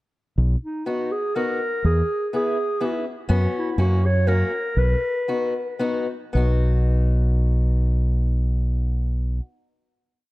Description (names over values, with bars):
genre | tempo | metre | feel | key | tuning
alpine folk, alpine dance band | 109-125 BPM | 3/4 | straight | B major | A4 = 437 Hz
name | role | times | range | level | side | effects
overdriven fingered electric bass | bass | 0.4-9.4 s | B1 to F#2 | -19 LUFS | equal | none
dark clarinet | melody | 0.6-5.8 s | D#4 to C#5 | -24 LUFS | equal | analog delay
fingerpicked acoustic archtop guitar | accompaniment | 0.9-9.4 s | A#3 to G#4 | -28 LUFS | left 2 dB | none
room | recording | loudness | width
light reverb, small room ambience | dark, warm production | -20 LUFS | side -19 dB against mid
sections
0.4-6.3 A section; 6.3-9.6 final chord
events
slowing down 3.3-6.3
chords
0.4 B; 1.8 E; 3.3 F#7sus4; 3.8 F#; 4.8 B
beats
| 0.38 0.87 1.36 | 1.84 2.33 2.81 | 3.29 3.78 4.27 | 4.77 5.28 5.80 | 6.35 6.90 7.44 | 7.98 8.53 9.08